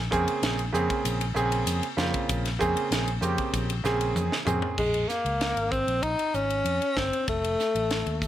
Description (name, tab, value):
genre	electric jazz fusion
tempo	96 BPM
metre	4/4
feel	straight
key	Bb dorian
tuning	A4 = 440 Hz
part	fingered electric bass	bass	0.0-8.3 s	F1 to F2	-30 LUFS	left 1 dB	none
part	bright baby grand piano	accompaniment	0.1-4.8 s	Db3 to Ab4	-27 LUFS	right 3 dB	none
part	crisp fusion drum kit	drums	0.1-8.3 s	crash cymbal, hi-hat, kick drum, ride cymbal, snare drum, toms	-31 LUFS	equal	none
part	breathy tenor saxophone	melody	4.8-8.3 s	Ab3 to Eb4	-26 LUFS	left 1 dB	slapback echo
room	light reverb, studio reverb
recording	none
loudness	-24 LUFS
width	side -12 dB against mid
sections	0.0-4.8 A section; 4.8-8.3 B section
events	drum fill 4.2-4.8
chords	0.0 Bbm9; 4.8 Bbm7; 7.3 F7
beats	0.43 1.05 1.67 | 2.29 2.92 3.54 4.16 | 4.78 5.41 6.03 6.66 | 7.28 7.90